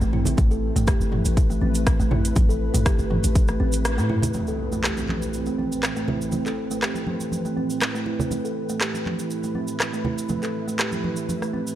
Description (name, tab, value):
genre	afro house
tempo	121 BPM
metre	4/4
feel	swing 54% on 16ths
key	A minor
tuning	A4 = 440 Hz
part	ethereal airy pad	sustained chords	0.0-11.8 s	A2 to B4	-30 LUFS	right 1 dB	ensemble chorus, built-in reverb, sidechain pumping
part	kalimba	arpeggios	0.0-11.7 s	E3 to A4	-28 LUFS	right 2 dB	sidechain pumping, low-pass filter, dub echo
part	warm 808-style bass	bass	0.0-4.3 s	G1 to A2	-24 LUFS	equal	sidechain pumping
part	cabasa	percussion	0.0-11.8 s	none	-38 LUFS	right 4 dB	none
part	house drum kit	drums	0.1-11.5 s	handclaps, hi-hat, rim click, toms	-27 LUFS	equal	none
part	congas	percussion	0.1-11.6 s	none	-30 LUFS	right 2 dB	none
part	electronic kick drum	drums	0.4-3.5 s	none	-20 LUFS	equal	none
part	impact	sound effects	4.3-6.3 s	none	-34 LUFS	equal	none
room	light reverb, digital ambience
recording	dark, warm production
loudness	-21 LUFS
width	side -12 dB against mid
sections	0.0-4.3 A section; 4.3-11.8 B section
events	kick drops out 3.9-4.3; band accent 3.9; impact 4.3-6.3; filter sweep on kalimba 4.3-11.8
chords	0.0 Am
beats	| 0.38 0.88 1.37 1.87 | 2.36 2.86 3.36 3.85 | 4.35 4.84 5.34 5.83 | 6.33 6.83 7.32 7.82 | 8.31 8.81 9.31 9.80 | 10.30 10.79 11.29